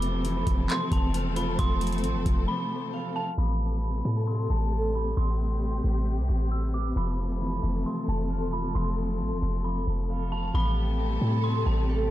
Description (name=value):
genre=hip hop, atmospheric cloud-rap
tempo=134 BPM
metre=4/4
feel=half-time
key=A minor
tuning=A4 = 440 Hz
part: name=dark detuned synth bell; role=melody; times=0.0-12.1 s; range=A5 to E6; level=-35 LUFS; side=right 1 dB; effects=chorus, phaser, ping-pong delay
part: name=warm symphonic string section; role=sustained chords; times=0.0-12.1 s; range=C3 to A4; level=-32 LUFS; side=left 2 dB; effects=sidechain pumping
part: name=concert harp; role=arpeggios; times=0.0-12.1 s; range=E3 to F6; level=-35 LUFS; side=right 2 dB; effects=ping-pong delay
part: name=warm 808-style bass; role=bass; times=0.0-12.1 s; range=E1 to A2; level=-27 LUFS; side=equal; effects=none
part: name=booming analog drum machine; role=drums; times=0.0-2.4 s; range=handclaps, hi-hat, kick drum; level=-27 LUFS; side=equal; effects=none
room=digital ambience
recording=dark, warm production, low-pass filter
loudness=-25 LUFS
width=side -14 dB against mid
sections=0.0-3.4 A section; 3.4-10.5 B section; 10.5-12.1 C section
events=break 2.5-3.4; filter sweep 3.4-10.5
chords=0.0 Fmaj7; 3.4 Am9; 7.0 Fmaj7; 10.5 Am9